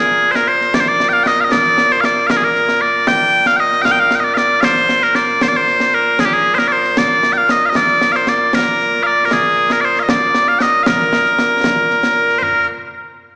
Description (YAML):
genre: scottish traditional, Scottish pipe music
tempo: 77 BPM (dotted quarters)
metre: 6/8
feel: straight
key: Bb mixolydian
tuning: A4 = 440 Hz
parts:
  - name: loud bright bagpipes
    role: melody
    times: 0.0-12.7 s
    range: Bb2 to G5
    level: -14 LUFS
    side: equal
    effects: none
  - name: concert snare drum, concert bass drum and concert toms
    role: drums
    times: 0.4-12.5 s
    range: none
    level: -23 LUFS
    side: equal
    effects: none
room: wet concert hall reverb, RT60 2.1 s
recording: recorded in a church or concert hall, small speaker sound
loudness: -14 LUFS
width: mono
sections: 0.0-12.4 A section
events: none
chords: none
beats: 0.74 | 1.52 2.30 | 3.08 3.86 | 4.63 5.42 | 6.19 6.97 | 7.75 8.53 | 9.31 10.09 | 10.87 11.65 | 12.43